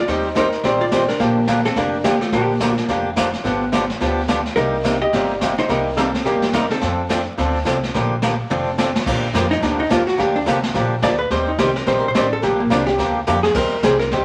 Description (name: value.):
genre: country, western swing.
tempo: 214 BPM.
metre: 4/4.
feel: swing 60% on 8ths.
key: Bb major.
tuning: A4 = 443 Hz.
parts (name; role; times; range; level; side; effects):
hollow-body jazz guitar; melody; 0.0-7.1, 9.5-14.2 s; A3 to Eb5; -22 LUFS; equal; none.
picked swing-style acoustic guitar; accompaniment; 0.1-14.2 s; C3 to C5; -23 LUFS; equal; none.
upright bass; bass; 0.1-14.2 s; F1 to F2; -29 LUFS; equal; none.
vintage brush drum kit; drums; 0.1-14.2 s; brushed snare drum, crash cymbal, hi-hat, kick drum, snare drum, toms; -26 LUFS; equal; none.
room: wet studio reverb, RT60 0.8 s.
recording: vinyl crackle.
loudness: -19 LUFS.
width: mono.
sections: 0.0-9.1 A section; 9.1-14.2 B section.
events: drum fill 8.5-9.1, 13.3; hollow-body jazz guitar solo 9.1-14.2.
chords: 0.1 Eb6; 1.2 Bb6; 3.4 G7; 4.6 Cm7; 6.8 F6; 7.9 Bb6; 8.5 F6; 9.1 Bb6; 11.3 Eb6; 12.4 Bb6; 13.6 Eb6.